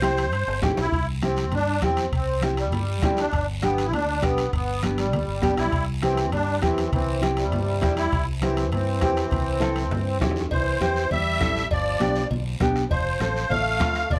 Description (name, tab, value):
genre	latin, cumbia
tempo	200 BPM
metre	4/4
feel	straight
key	C major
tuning	A4 = 441 Hz
part	musette accordion	melody	0.0-14.2 s	G3 to F5	-29 LUFS	equal	none
part	nylon-string guitar	accompaniment	0.0-14.0 s	B3 to A4	-28 LUFS	equal	none
part	fingered electric bass	bass	0.0-14.2 s	F1 to G2	-30 LUFS	equal	none
part	bombo	percussion	0.0-14.2 s	none	-31 LUFS	equal	none
part	congas	percussion	0.0-14.2 s	none	-35 LUFS	equal	none
part	guiro	percussion	0.0-14.2 s	none	-41 LUFS	equal	none
part	timbales and cowbell	percussion	0.0-14.2 s	none	-39 LUFS	equal	none
part	bright trombone	second line	5.6-14.2 s	C3 to A3	-35 LUFS	equal	tape echo
room	moderate studio reverb, RT60 0.5 s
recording	none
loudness	-24 LUFS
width	mono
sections	0.9-10.5 A section; 10.5-14.2 B section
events	drum fill 0.5-0.9, 9.9-10.5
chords	0.0 C; 3.3 G; 5.7 C; 11.7 G7; 12.9 F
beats	0.03 0.33 0.63 | 0.93 1.23 1.53 1.83 | 2.13 2.43 2.73 3.03 | 3.33 3.63 3.93 4.23 | 4.53 4.83 5.13 5.43 | 5.72 6.03 6.33 6.62 | 6.92 7.22 7.52 7.82 | 8.12 8.42 8.72 9.02 | 9.32 9.62 9.92 10.22 | 10.52 10.82 11.12 11.41 | 11.71 12.01 12.31 12.61 | 12.91 13.21 13.51 13.80 | 14.10